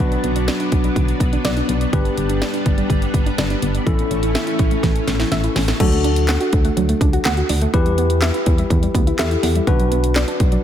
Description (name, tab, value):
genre	synth-pop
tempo	124 BPM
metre	4/4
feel	straight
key	D major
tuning	A4 = 440 Hz
part	tine electric piano	accompaniment	0.0-10.6 s	C#4 to B4	-23 LUFS	left 4 dB	none
part	string machine, full ensemble	sustained chords	0.0-5.8 s	E3 to D4	-24 LUFS	equal	ensemble chorus
part	soft round pluck	arpeggios	0.0-10.6 s	D3 to F#5	-24 LUFS	right 2 dB	chorus, tape echo
part	solid FM bass	bass	0.0-10.6 s	G1 to E2	-20 LUFS	equal	none
part	house drum kit	drums	0.0-10.6 s	crash cymbal, handclaps, hi-hat, kick drum, snare drum	-20 LUFS	equal	none
room	light reverb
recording	dense, heavily limited modern master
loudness	-15 LUFS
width	side -10 dB against mid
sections	0.0-5.8 A section; 5.8-10.6 B section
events	drum fill 4.8-5.8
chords	0.0 Bm; 1.9 G; 3.9 A; 5.8 D; 7.7 Em; 9.7 Bm